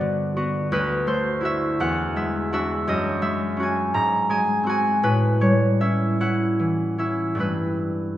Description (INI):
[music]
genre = classical, solo harp piece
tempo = 48-57 BPM (dotted quarters)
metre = 6/8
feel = rubato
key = G major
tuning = A4 = 440 Hz
[part]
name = concert harp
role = solo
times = 0.0-8.2 s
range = D2 to Bb5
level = -20 LUFS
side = equal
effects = none
[sound]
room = wet recital hall reverb, RT60 1.4 s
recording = heard from further back in the room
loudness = -20 LUFS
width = side -13 dB against mid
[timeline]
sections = 0.0-8.2 A section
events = none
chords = 0.0 Gmaj7; 0.7 D9; 1.8 E9; 2.9 F#sus2; 3.9 Ab9; 5.0 A9; 7.4 G69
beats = | 0.72 1.80 | 2.88 3.94 | 5.03 6.19 | 7.39